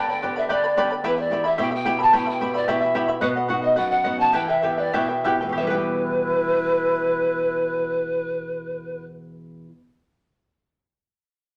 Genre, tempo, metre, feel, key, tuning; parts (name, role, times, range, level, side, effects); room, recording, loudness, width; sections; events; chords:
andean folk, Andean ensemble; 89-111 BPM; 2/4; straight; E minor; A4 = 440 Hz
reedy pan flute; melody; 0.0-9.0 s; B4 to A5; -25 LUFS; equal
mellow large quena; second line; 0.0-9.0 s; E4 to A5; -31 LUFS; equal
charango; accompaniment; 0.0-9.8 s; E4 to B5; -28 LUFS; equal
flamenco guitar; accompaniment; 0.0-9.8 s; E2 to G4; -31 LUFS; equal
wet studio reverb, RT60 0.8 s; -22 LUFS; mono
0.0-5.6 A section; 5.6-8.3 B section
slowing down 3.2-5.6
0.0 G; 1.0 Em; 3.2 B; 4.3 Em